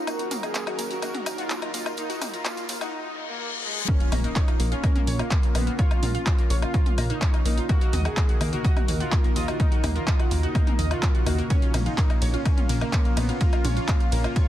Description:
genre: melodic techno.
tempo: 126 BPM.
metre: 4/4.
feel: straight.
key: Bb minor.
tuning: A4 = 443 Hz.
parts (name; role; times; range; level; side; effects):
soft supersaw; melody; 0.0-14.5 s; Ab3 to Ab4; -32 LUFS; equal; sidechain pumping, digital delay.
warm analog pad; sustained chords; 0.0-14.5 s; Eb3 to Eb5; -37 LUFS; right 1 dB; chorus, sidechain pumping.
analog pluck; arpeggios; 0.0-14.5 s; Bb3 to Eb6; -33 LUFS; left 1 dB; chorus, sidechain pumping, ping-pong delay.
riser, reverse cymbal and impact; sound effects; 0.2-5.8 s; none; -35 LUFS; left 3 dB; none.
deep dark ambient pad; texture; 0.0-14.5 s; Db4 to Bb5; -38 LUFS; right 1 dB; none.
deep house drum kit; drums; 0.1-14.5 s; handclaps, hi-hat, ride cymbal, toms, woodblock; -32 LUFS; left 1 dB; overdrive.
tambourine; percussion; 0.1-2.9 s; none; -40 LUFS; right 5 dB; none.
plucky analog bass; bass; 0.3-14.3 s; Bb1 to Eb2; -26 LUFS; equal; sidechain pumping, high-pass filter.
overtone-sweeping drone; drone; 5.6-14.5 s; Bb2 to Db3; -39 LUFS; equal; none.
electronic kick drum; drums; 3.9-14.5 s; none; -22 LUFS; equal; overdrive.
room: little or no reverb.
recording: dense, heavily limited modern master, high-pass filter.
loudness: -21 LUFS.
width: side -13 dB against mid.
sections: 0.0-3.9 A section; 3.9-14.5 B section.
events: build-up 0.0-3.9; filter sweep on supersaw synth 0.0-3.9; filter sweep 0.0-3.9; reverse cymbal 2.9-3.9; drop 3.9-14.5; impact 3.9-5.8.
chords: 0.1 Ebm; 3.9 Bbm; 7.7 Ebm; 11.5 Bbm.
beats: | 0.07 0.55 1.03 1.50 | 1.98 2.46 2.93 3.41 | 3.88 4.36 4.84 5.31 | 5.79 6.26 6.74 7.22 | 7.69 8.17 8.64 9.12 | 9.60 10.07 10.55 11.03 | 11.50 11.98 12.46 12.93 | 13.41 13.88 14.36.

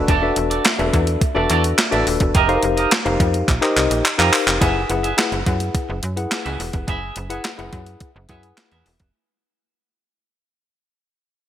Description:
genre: early-eighties boogie funk.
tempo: 106 BPM.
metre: 4/4.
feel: straight.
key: unclear.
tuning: A4 = 440 Hz.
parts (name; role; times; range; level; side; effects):
tine electric piano; accompaniment; 0.0-8.9 s; D4 to F#5; -21 LUFS; left 3 dB; medium stereo tremolo.
slap-like FM bass; bass; 0.0-9.1 s; D#1 to F#2; -23 LUFS; right 1 dB; none.
twangy electric guitar; riff; 0.1-9.0 s; F#4 to E5; -24 LUFS; right 6 dB; wide subtle chorus.
clean 12-bit digital drum machine; drums; 0.1-9.1 s; handclaps, hi-hat, kick drum, snare drum; -19 LUFS; equal; gated reverb.
room: moderate plate reverb, RT60 2.8 s.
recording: bright 1980s-style digital production.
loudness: -16 LUFS.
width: side -11 dB against mid.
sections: 0.0-4.6 A section; 4.6-9.1 B section.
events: drum fill 3.5-4.6; fade-out 4.6-9.1.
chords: 0.0 E9sus4; 2.4 F9sus4; 4.6 F#9sus4.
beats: | 0.09 0.65 1.22 1.78 | 2.35 2.92 3.48 4.05 | 4.61 5.18 5.75 6.31 | 6.88 7.44 8.01 8.58.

